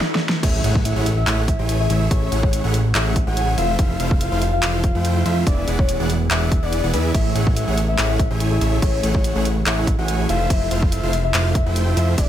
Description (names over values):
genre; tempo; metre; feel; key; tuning
future bass; 143 BPM; 4/4; swing 54% on 16ths, half-time; A major; A4 = 437 Hz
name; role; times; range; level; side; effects
felt-muted upright piano; accompaniment; 0.0-0.5 s; none; barely audible; none; none
big-room dance drum kit; drums; 0.0-12.3 s; crash cymbal, handclaps, hi-hat, snare drum; -24 LUFS; equal; overdrive
swell and impact; sound effects; 0.0-2.1 s; none; -28 LUFS; equal; none
soft octave-layered synth lead; melody; 0.4-12.3 s; B4 to F#5; -26 LUFS; left 2 dB; chorus, phaser, sidechain pumping, digital delay
ethereal airy pad; sustained chords; 1.4-12.3 s; C3 to G#4; -31 LUFS; right 1 dB; none
supersaw chords; riff; 0.4-12.3 s; A3 to G#5; -25 LUFS; equal; sidechain pumping
fat analog bass; bass; 0.4-12.3 s; E1 to F2; -21 LUFS; equal; tube saturation, sidechain pumping
electronic kick drum; drums; 0.4-12.3 s; none; -19 LUFS; equal; overdrive
room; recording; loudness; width
little or no reverb; none; -17 LUFS; side -11 dB against mid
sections
0.4-12.3 A section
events
swell 0.0-0.4; drum fill 0.0-0.4; stop 0.0-0.4; drop 0.4-12.3; impact 0.4-2.1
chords
0.4 Amaj7; 3.6 Fmaj7; 5.5 E7; 7.1 Amaj7; 10.3 Fmaj7